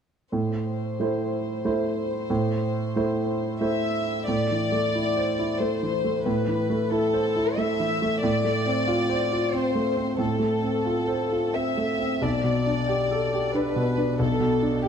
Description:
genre	neoclassical piano and strings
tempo	91 BPM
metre	3/4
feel	rubato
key	unclear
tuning	A4 = 440 Hz
part	warm chamber violin section	melody	0.3-14.9 s	G4 to E5	-27 LUFS	left 4 dB	none
part	warm grand piano	accompaniment	0.3-14.9 s	B1 to C5	-24 LUFS	right 2 dB	none
room	moderate recital hall reverb, RT60 1.6 s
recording	dark, warm production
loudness	-22 LUFS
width	side -7 dB against mid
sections	0.3-4.3 A section; 4.3-14.9 B section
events	none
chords	0.3 Am; 8.2 F/A; 12.2 Gadd9/B

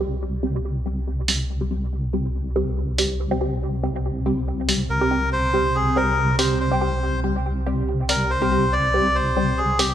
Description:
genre	deep dubstep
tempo	141 BPM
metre	4/4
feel	swing 54% on 16ths, half-time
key	unclear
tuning	A4 = 440 Hz
part	dark analog pad	sustained chords	2.5-9.9 s	C4	-29 LUFS	right 1 dB	chorus, phaser
part	filtered dub chord stab	stabs	0.0-9.9 s	G3 to G4	-26 LUFS	equal	phaser, dub echo
part	deep soft wobble bass	bass	0.0-9.9 s	C2	-25 LUFS	equal	chorus
part	electronic hi-hat	drums	1.3-9.9 s	none	-22 LUFS	right 2 dB	studio ambience
part	melodica	melody	4.9-9.9 s	G4 to D5	-22 LUFS	left 1 dB	dub echo
room	moderate lush hall reverb, RT60 1.7 s, digital ambience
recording	bright 1980s-style digital production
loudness	-20 LUFS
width	side -10 dB against mid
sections	0.0-9.9 A section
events	filter sweep on synth stab 0.0-9.9; filter sweep on analog synth pad 0.0-9.9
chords	0.0 C5

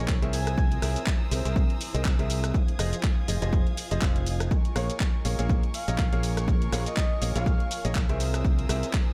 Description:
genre	piano house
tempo	122 BPM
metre	4/4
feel	swing 56% on 16ths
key	unclear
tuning	A4 = 439 Hz
part	rich chamber violin section	sustained chords	0.0-9.1 s	Bb4 to Ab6	-44 LUFS	equal	sidechain pumping
part	bright grand piano	riff	0.0-8.8 s	F3 to F5	-36 LUFS	equal	vintage 12-bit sampler grit, sidechain pumping, digital delay
part	fingered electric bass	bass	0.0-8.8 s	F1 to C2	-31 LUFS	equal	sidechain pumping
part	granular cloud pad	texture	0.0-9.1 s	E4 to G#5	-45 LUFS	equal	none
part	electronic kick drum	drums	0.1-9.0 s	none	-27 LUFS	equal	overdrive, studio reverb
part	garage drum kit	drums	0.1-9.1 s	handclaps, hi-hat, rim click, shaker	-37 LUFS	equal	studio reverb
part	breathy flute-like synth lead	melody	0.3-1.0, 4.8-7.8 s	Db5 to G#5	-40 LUFS	equal	chorus, vintage 12-bit sampler grit, digital delay
room	digital ambience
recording	none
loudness	-26 LUFS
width	mono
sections	0.0-9.1 A section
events	none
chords	0.3 C7alt; 2.5 Fm7; 4.5 Bbm7; 8.2 C7alt

